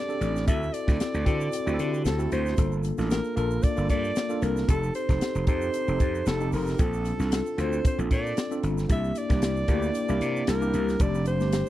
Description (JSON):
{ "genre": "polished 1980s jazz-funk pop", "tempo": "114 BPM", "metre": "4/4", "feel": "swing 54% on 16ths", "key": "F major", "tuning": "A4 = 440 Hz", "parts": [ { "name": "breathy alto saxophone", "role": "melody", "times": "0.0-11.7 s", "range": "A4 to E5", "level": "-31 LUFS", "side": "right 1 dB", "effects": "slapback echo" }, { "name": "mellow tine electric piano", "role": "accompaniment", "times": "0.0-11.7 s", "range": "A3 to A4", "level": "-29 LUFS", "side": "left 2 dB", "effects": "medium stereo tremolo, analog chorus" }, { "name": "tube shaker", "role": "percussion", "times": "0.1-11.7 s", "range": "none", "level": "-50 LUFS", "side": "right 19 dB", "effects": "none" }, { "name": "gritty slap bass", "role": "bass", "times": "0.2-11.6 s", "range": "F1 to D3", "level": "-28 LUFS", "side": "equal", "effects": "overdrive" }, { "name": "crisp fusion drum kit", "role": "drums", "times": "0.2-11.7 s", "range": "hi-hat, kick drum, snare drum", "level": "-25 LUFS", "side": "equal", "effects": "none" } ], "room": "little or no reverb", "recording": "dry, close 1970s-style studio recording", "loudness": "-23 LUFS", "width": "side -14 dB against mid", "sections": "0.0-11.7 A section", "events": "none", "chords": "0.5 D7; 2.6 Gm7; 4.7 F7; 6.8 Bbmaj9; 8.9 C7; 11.0 F6" }